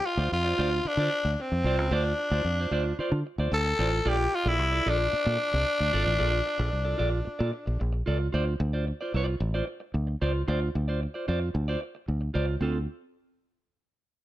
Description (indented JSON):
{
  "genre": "disco",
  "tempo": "112 BPM",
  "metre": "4/4",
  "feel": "straight",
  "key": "D minor",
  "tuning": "A4 = 440 Hz",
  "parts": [
    { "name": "growling tenor saxophone", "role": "melody", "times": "0.0-7.8 s", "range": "C4 to A4", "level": "-27 LUFS", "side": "left 1 dB", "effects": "none" },
    { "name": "clean electric guitar", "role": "accompaniment", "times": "0.1-12.8 s", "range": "C4 to D5", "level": "-32 LUFS", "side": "right 2 dB", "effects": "none" },
    { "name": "fingered electric bass", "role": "bass", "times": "0.2-12.9 s", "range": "G#1 to D3", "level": "-27 LUFS", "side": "equal", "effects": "none" }
  ],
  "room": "light reverb, studio reverb",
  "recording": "none",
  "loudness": "-25 LUFS",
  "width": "side -15 dB against mid",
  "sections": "0.0-8.3 A section; 8.3-12.6 B section; 12.6-14.2 C section",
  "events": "none",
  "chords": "0.0 Dm7; 4.1 Bbmaj7; 8.3 Dm7"
}